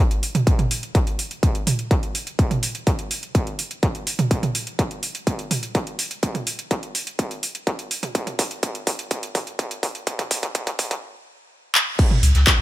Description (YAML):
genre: melodic techno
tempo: 125 BPM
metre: 4/4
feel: straight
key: unclear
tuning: A4 = 440 Hz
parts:
  - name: deep house drum kit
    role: drums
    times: 0.1-12.6 s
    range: crash cymbal, handclaps, hi-hat, toms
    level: -23 LUFS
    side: right 2 dB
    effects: overdrive, studio reverb
  - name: electronic kick drum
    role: drums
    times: 0.5-12.6 s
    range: none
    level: -21 LUFS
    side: equal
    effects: distortion, overdrive, studio reverb
  - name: vintage brush drum kit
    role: drums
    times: 12.0-12.6 s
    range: hi-hat, snare drum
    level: -28 LUFS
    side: left 1 dB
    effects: none
  - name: round analog bass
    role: bass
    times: 12.2-12.6 s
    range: C#2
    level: -15 LUFS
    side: equal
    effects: sidechain pumping
room: studio ambience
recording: high-pass filter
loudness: -20 LUFS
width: side -15 dB against mid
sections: 0.0-12.0 A section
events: build-up 0.0-12.0; filter sweep 0.0-12.0; drum fill 4.3-11.0, 11.8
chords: none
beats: | 0.47 0.95 1.43 1.91 | 2.39 2.87 3.35 3.83 | 4.31 4.79 5.27 5.75 | 6.23 6.71 7.19 7.67 | 8.15 8.63 9.11 9.59 | 10.07 10.55 11.03 11.51 | 11.99 12.47